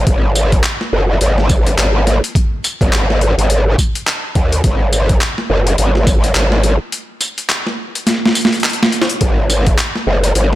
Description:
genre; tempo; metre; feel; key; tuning
glitch hop; 105 BPM; 4/4; swing 60% on 16ths; unclear; A4 = 437 Hz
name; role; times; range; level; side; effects
growl bass; bass; 0.0-10.6 s; F#1 to D#2; -13 LUFS; equal; chorus, tube saturation
boom bap sampler-style drum kit; drums; 0.1-10.6 s; handclaps, hi-hat, snare drum, tambourine; -17 LUFS; equal; overdrive
electronic kick drum; drums; 0.1-9.8 s; none; -15 LUFS; equal; overdrive
room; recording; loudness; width
little or no reverb; none; -12 LUFS; side -15 dB against mid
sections
0.0-10.6 A section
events
break 6.9-9.2; drum fill 8.1-9.2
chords
none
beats
| 0.07 0.64 1.21 1.78 | 2.35 2.92 3.50 4.07 | 4.64 5.21 5.78 6.35 | 6.92 7.50 8.07 8.64 | 9.21 9.78 10.35

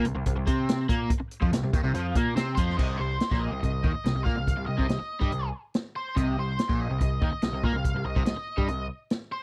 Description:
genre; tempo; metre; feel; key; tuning
classic rock; 142 BPM; 4/4; straight; C minor; A4 = 441 Hz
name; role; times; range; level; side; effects
crunchy overdriven guitar; riff; 0.0-8.9 s; Bb2 to C4; -32 LUFS; equal; phaser
growling picked electric bass; bass; 0.0-8.9 s; Bb1 to C3; -33 LUFS; equal; overdrive
vintage drum kit; drums; 0.0-9.2 s; crash cymbal, hi-hat, kick drum, snare drum; -30 LUFS; equal; none
octave-fuzz lead guitar; melody; 2.6-9.4 s; C5 to F5; -36 LUFS; equal; distortion, slapback echo
room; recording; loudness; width
little or no reverb; dry, close 1970s-style studio recording; -27 LUFS; mono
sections
0.0-2.8 A section; 2.8-9.4 B section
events
none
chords
0.0 N.C.; 2.8 Cm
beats
0.26 0.68 | 1.10 1.52 1.94 2.36 | 2.79 3.21 3.63 4.05 | 4.47 4.89 5.32 5.74 | 6.16 6.58 7.00 7.42 | 7.84 8.27 8.69 9.11

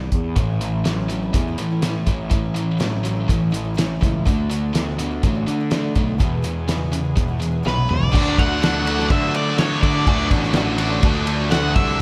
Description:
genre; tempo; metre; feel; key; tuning
classic rock; 124 BPM; 4/4; straight; unclear; A4 = 439 Hz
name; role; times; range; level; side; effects
fuzz picked electric bass; bass; 0.0-12.0 s; A1 to D3; -26 LUFS; equal; overdrive
cloth-damped thuddy drum kit; drums; 0.1-11.9 s; crash cymbal, hi-hat, kick drum, ride cymbal, snare drum, toms; -23 LUFS; equal; none
picked twelve-string acoustic guitar; accompaniment; 0.4-12.0 s; E2 to G#4; -35 LUFS; equal; none
distorted electric guitar; riff; 0.4-12.0 s; E2 to D4; -29 LUFS; equal; distortion
tight distorted guitar; riff; 0.4-12.0 s; E2 to F#4; -29 LUFS; equal; distortion
octave-fuzz lead guitar; melody; 7.7-12.0 s; B4 to F#5; -26 LUFS; equal; distortion, slapback echo
honky-tonk upright piano; accompaniment; 8.1-11.9 s; F#4 to A5; -36 LUFS; equal; none
overdriven electric guitar; riff; 8.1-12.0 s; D3 to D4; -30 LUFS; equal; none
room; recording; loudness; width
light reverb, small room ambience; none; -20 LUFS; mono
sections
0.0-8.1 A section; 8.1-12.0 B section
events
drum fill 7.7-8.1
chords
0.4 A; 4.3 D; 6.2 E; 8.1 D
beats
| 0.36 0.85 1.34 1.83 | 2.31 2.80 3.29 3.78 | 4.26 4.75 5.24 5.72 | 6.21 6.69 7.18 7.66 | 8.15 8.63 9.11 9.60 | 10.08 10.56 11.04 11.53 | 12.01

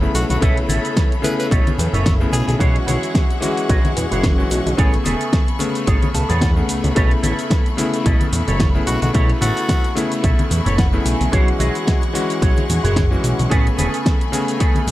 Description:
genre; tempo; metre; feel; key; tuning
nu-disco, nu disco; 110 BPM; 4/4; swing 55% on 16ths; unclear; A4 = 439 Hz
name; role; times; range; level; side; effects
warm electric grand piano; accompaniment; 0.0-14.9 s; C#3 to G#5; -23 LUFS; left 2 dB; sidechain pumping, digital delay
clear symphonic string section; sustained chords; 0.0-14.9 s; A3 to C#6; -27 LUFS; left 2 dB; sidechain pumping
fat analog bass; bass; 0.0-13.9 s; E1 to E2; -20 LUFS; equal; none
tube shaker and congas; percussion; 0.0-14.9 s; none; -27 LUFS; left 1 dB; none
raspy tenor saxophone; melody; 0.1-2.6, 8.9-10.0 s; F#4 to B4; -27 LUFS; left 1 dB; tape echo
electric guitar with an envelope filter; riff; 0.1-14.8 s; C#4 to A5; -26 LUFS; right 3 dB; analog chorus, digital delay
pop drum kit; drums; 0.1-14.9 s; hi-hat, shaker, snare drum; -25 LUFS; equal; none
electronic kick drum; drums; 0.4-14.7 s; none; -17 LUFS; equal; none
room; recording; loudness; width
little or no reverb; dark, warm production; -15 LUFS; side -15 dB against mid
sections
0.0-14.9 A section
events
clean electric guitar fill 5.9-7.0, 10.2-11.3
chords
0.0 B9sus4; 2.6 E69/B; 4.8 Amaj9; 7.0 B9sus4; 11.3 E69/B; 13.5 Amaj9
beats
| 0.42 0.97 1.51 2.06 | 2.60 3.15 3.69 4.24 | 4.78 5.33 5.88 6.42 | 6.97 7.51 8.06 8.60 | 9.15 9.69 10.24 10.78 | 11.33 11.88 12.42 12.97 | 13.51 14.06 14.60

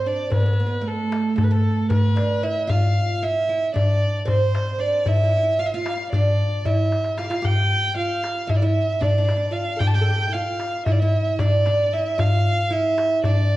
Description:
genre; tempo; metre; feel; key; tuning
Turkish makam ensemble; 228 BPM (eighths); 9/8; straight; D makam huseyni; A4 = 440 Hz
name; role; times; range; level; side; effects
dark violin; melody; 0.0-13.6 s; A4 to A5; -24 LUFS; right 1 dB; none
oud; second line; 0.0-13.6 s; A3 to A4; -26 LUFS; right 2 dB; none
darbuka; percussion; 0.3-13.4 s; none; -21 LUFS; left 1 dB; none
room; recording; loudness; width
wet recital hall reverb, RT60 1.4 s; dark, warm production, nothing above 10.4 kHz; -18 LUFS; side -16 dB against mid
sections
0.0-13.6 A section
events
drum fill 6.9-7.4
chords
none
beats
0.05 | 0.32 0.58 0.85 1.11 1.37 1.64 1.90 2.17 2.43 | 2.69 2.96 3.22 3.48 3.75 4.01 4.28 4.54 4.80 | 5.07 5.33 5.59 5.86 6.12 6.38 6.65 6.91 7.18 | 7.44 7.70 7.97 8.23 8.49 8.76 9.02 9.29 9.55 | 9.81 10.08 10.34 10.60 10.87 11.13 11.39 11.66 11.92 | 12.19 12.45 12.71 12.98 13.24 13.50

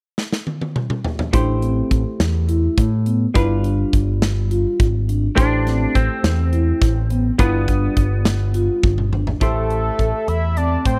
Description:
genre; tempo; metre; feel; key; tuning
progressive instrumental, band music in an uneven meter; 208 BPM (eighths); 7/8; straight; A minor; A4 = 440 Hz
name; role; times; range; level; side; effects
big rock drum kit; drums; 0.2-11.0 s; hi-hat, kick drum, snare drum, toms; -22 LUFS; equal; none
hollow-body jazz guitar; accompaniment; 1.3-11.0 s; G3 to C5; -29 LUFS; equal; none
vibraphone with soft mallets; arpeggios; 1.3-10.9 s; B3 to A4; -26 LUFS; equal; none
overdriven picked electric bass; bass; 1.3-11.0 s; G1 to A2; -22 LUFS; equal; none
semi-hollow electric guitar; second line; 5.4-9.1 s; B3 to D4; -28 LUFS; equal; analog chorus
lead with added fifth; melody; 9.4-11.0 s; A4 to E5; -24 LUFS; equal; chorus, tape echo
room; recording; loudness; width
small room ambience; dry, close 1970s-style studio recording; -19 LUFS; mono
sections
0.0-1.3 A section; 1.3-9.4 B section; 9.4-11.0 C section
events
drum fill 0.2-1.3, 8.8-9.4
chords
0.0 N.C.; 1.3 Am7; 3.4 G7; 5.4 Am7; 7.4 G7; 9.4 Am7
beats
0.18 0.47 0.76 1.04 | 1.33 1.62 1.91 2.20 2.49 2.77 3.06 | 3.35 3.64 3.93 4.22 4.51 4.79 5.08 | 5.37 5.66 5.95 6.24 6.53 6.82 7.10 | 7.39 7.68 7.97 8.26 8.55 8.84 9.12 | 9.41 9.70 9.99 10.28 10.57 10.86

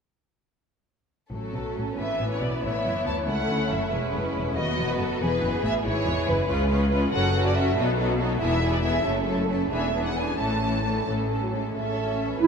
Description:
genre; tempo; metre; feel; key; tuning
quick classical-period movement for symphony orchestra; 92 BPM (dotted quarters); 6/8; rubato; A major; A4 = 440 Hz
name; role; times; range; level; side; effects
rich studio violin section; second line; 1.3-12.5 s; C#4 to C#5; -29 LUFS; right 1 dB; none
clear studio viola section; accompaniment; 1.3-12.5 s; E3 to C#4; -30 LUFS; left 2 dB; none
rich studio cello section; bass; 1.3-12.5 s; C#2 to E3; -30 LUFS; equal; none
rich studio double bass section; bass; 1.3-12.5 s; E1 to D#2; -30 LUFS; equal; none
warm studio violin section; melody; 2.0-12.5 s; A4 to A5; -29 LUFS; right 1 dB; none
mellow clarinet; second line; 12.4-12.5 s; E4; -15 LUFS; right 7 dB; none
room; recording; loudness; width
wet cathedral reverb, RT60 7.3 s; in a vast, echoing space; -23 LUFS; side -6 dB against mid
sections
1.3-11.8 A section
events
none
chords
1.3 A; 2.0 E/G#; 2.6 A; 3.9 E; 4.6 B; 5.2 E; 6.5 C#7; 7.1 F#m; 7.8 B7; 8.4 E; 9.1 F#m; 9.7 E7; 10.4 A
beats
| 1.31 1.97 | 2.63 3.28 | 3.92 4.57 | 5.22 5.86 | 6.49 7.13 | 7.77 8.41 | 9.06 9.72 | 10.40 11.07 | 11.76 12.42

